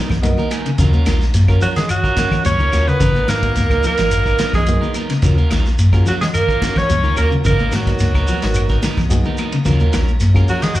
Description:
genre	afrobeat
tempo	108 BPM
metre	4/4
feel	straight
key	Eb minor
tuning	A4 = 440 Hz
part	clean electric guitar	arpeggios	0.0-10.7 s	Db3 to Gb3	-22 LUFS	left 3 dB	none
part	electric guitar at the edge of break-up	stabs	0.0-10.7 s	Gb3 to Bb4	-27 LUFS	right 7 dB	spring reverb, slapback echo
part	fingered electric bass	bass	0.1-10.8 s	Ab1 to Eb3	-16 LUFS	equal	none
part	vintage brush drum kit	drums	0.1-10.8 s	hi-hat, kick drum, ride cymbal, snare drum	-23 LUFS	equal	none
part	claves	percussion	0.1-10.8 s	none	-34 LUFS	left 2 dB	none
part	congas	percussion	0.1-10.8 s	none	-25 LUFS	right 1 dB	slapback echo
part	shekere	percussion	0.1-10.8 s	none	-24 LUFS	equal	none
part	reed electric piano	accompaniment	0.2-10.7 s	Cb3 to Ab5	-28 LUFS	equal	overdrive, spring reverb, slapback echo
part	edgy alto saxophone	melody	1.6-10.8 s	Gb4 to Db5	-20 LUFS	right 1 dB	slapback echo
part	edgy tenor saxophone	second line	1.6-10.8 s	Gb3 to Db4	-26 LUFS	right 4 dB	slapback echo
room	studio reverb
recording	live gig heard through the venue's PA, club reverb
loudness	-13 LUFS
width	side -15 dB against mid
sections	0.0-10.8 A section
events	reed electric piano fill 0.0-0.8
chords	0.0 Abm9; 0.8 Ebm9; 3.0 Abm9; 5.2 Ebm9; 7.4 Abm9; 9.7 Ebm9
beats	0.23 | 0.79 1.34 1.90 2.45 | 3.00 3.56 4.11 4.67 | 5.22 5.78 6.33 6.89 | 7.44 8.00 8.55 9.10 | 9.65 10.21 10.76

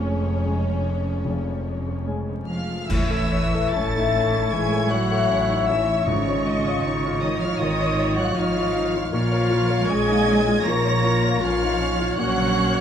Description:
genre	cinematic, emotional film score for orchestra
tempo	78 BPM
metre	4/4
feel	uneven beats, rubato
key	Db major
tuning	A4 = 444 Hz
part	warm studio violin section	melody	0.0-12.8 s	Db5 to Bb6	-31 LUFS	right 1 dB	none
part	warm symphonic violin section	second line	0.0-12.8 s	Db4 to Bb5	-32 LUFS	right 1 dB	none
part	warm grand piano	accompaniment	0.0-12.8 s	F1 to Eb5	-28 LUFS	left 2 dB	none
part	warm symphonic viola section	accompaniment	0.0-12.8 s	Db3 to Eb5	-31 LUFS	right 2 dB	none
part	warm French horn section	sustained chords	0.0-12.8 s	Ab3 to Bb4	-28 LUFS	left 4 dB	none
part	concert harp	arpeggios	0.0-12.8 s	Ab2 to Eb6	-29 LUFS	left 11 dB	none
part	warm symphonic cello section	bass	0.0-12.8 s	F2 to Bb3	-27 LUFS	right 2 dB	none
part	warm symphonic double bass section	bass	0.0-12.8 s	F1 to Bb1	-27 LUFS	right 2 dB	none
part	small flute group	second line	2.9-12.8 s	Db6	-34 LUFS	left 1 dB	none
part	warm clarinet	second line	2.9-12.8 s	Db4 to F4	-32 LUFS	right 2 dB	none
part	warm oboe	second line	2.9-12.8 s	Db5 to E5	-33 LUFS	right 2 dB	none
part	clash cymbals and concert bass drum	percussion	2.9-4.5 s	none	-29 LUFS	equal	none
part	timpani	percussion	6.1-7.2 s	Ab2	-32 LUFS	right 1 dB	none
room	moderate scoring stage reverb, RT60 1.6 s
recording	close, detailed microphones, vinyl crackle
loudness	-19 LUFS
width	side -8 dB against mid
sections	0.0-2.9 A section; 2.9-12.8 B section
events	band accent 2.9-3.7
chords	0.0 Db/F; 2.9 A; 6.1 Dbadd9/Ab; 9.1 Bbm; 12.2 Gb/Bb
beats	0.45 1.26 2.07 | 2.89 3.73 4.52 5.29 | 6.06 6.83 7.60 8.36 | 9.12 9.89 10.66 11.42 | 12.17

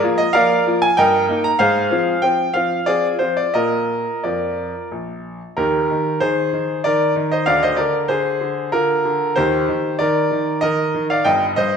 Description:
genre	classical-period piano sonatina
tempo	95 BPM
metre	3/4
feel	rubato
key	Eb major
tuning	A4 = 440 Hz
part	bright grand piano	solo	0.0-11.8 s	G1 to Bb5	-16 LUFS	equal	none
room	moderate recital hall reverb, RT60 1.6 s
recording	minimal, uncompressed stereo recording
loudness	-16 LUFS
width	side -6 dB against mid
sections	0.0-5.6 A section; 5.6-11.8 B section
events	none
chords	0.0 Bb7; 1.0 Eb/G; 1.6 Fm/Ab; 3.5 Bb; 5.6 Eb; 7.5 Bb7/D; 9.4 Eb; 11.2 Eb/G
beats	0.35 0.97 | 1.60 2.23 2.87 | 3.54 4.23 4.90 | 5.57 6.21 6.84 | 7.47 8.10 8.73 | 9.37 10.00 10.62 | 11.25

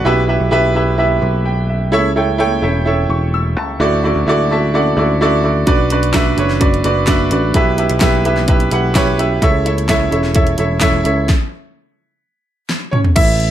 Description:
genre	piano-driven pop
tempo	128 BPM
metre	4/4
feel	straight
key	unclear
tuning	A4 = 440 Hz
part	bright upright piano	accompaniment	0.0-13.5 s	A2 to E6	-15 LUFS	right 2 dB	none
part	picked electric bass	bass	0.0-13.5 s	E1 to D2	-18 LUFS	equal	none
part	pop drum kit	drums	5.7-13.5 s	crash cymbal, handclaps, hi-hat, kick drum, ride cymbal, snare drum, toms	-16 LUFS	equal	none
room	moderate large studio reverb, RT60 0.9 s, digital ambience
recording	none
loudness	-12 LUFS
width	side -11 dB against mid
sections	0.0-13.2 A section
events	upright piano fill 4.3-5.7; stop 11.3-13.2; drum fill 12.7-13.2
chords	0.1 Em/B; 1.9 A; 3.8 Dadd9; 5.7 Bm; 7.5 Em/B; 9.4 A; 11.3 N.C.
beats	| 0.05 0.52 0.99 1.46 | 1.93 2.40 2.86 3.33 | 3.80 4.27 4.74 5.20 | 5.67 6.14 6.61 7.08 | 7.54 8.01 8.48 8.95 | 9.42 9.89 10.36 10.82 | 11.29 11.76 12.23 12.70 | 13.16

